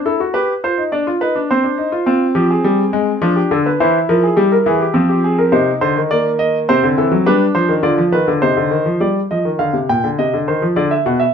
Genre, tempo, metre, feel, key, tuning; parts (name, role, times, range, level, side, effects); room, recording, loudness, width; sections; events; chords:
classical, baroque-style 3-part fugue for grand piano; 104 BPM; 3/4; straight; A4 = 440 Hz
clear grand piano; solo; 0.0-11.3 s; Bb2 to G5; -13 LUFS; equal
moderate stone room reverb, RT60 0.9 s; close, detailed microphones; -13 LUFS; side -7 dB against mid
0.0-9.0 A section; 9.0-11.3 B section
0.3 G7; 1.5 Cm; 2.1 Fm; 3.2 G7/F; 3.8 C7/E; 4.9 Fm; 5.5 Cm; 6.7 D7/C; 7.3 G7; 8.4 Cm; 9.0 G5; 10.2 Cmadd9; 10.8 D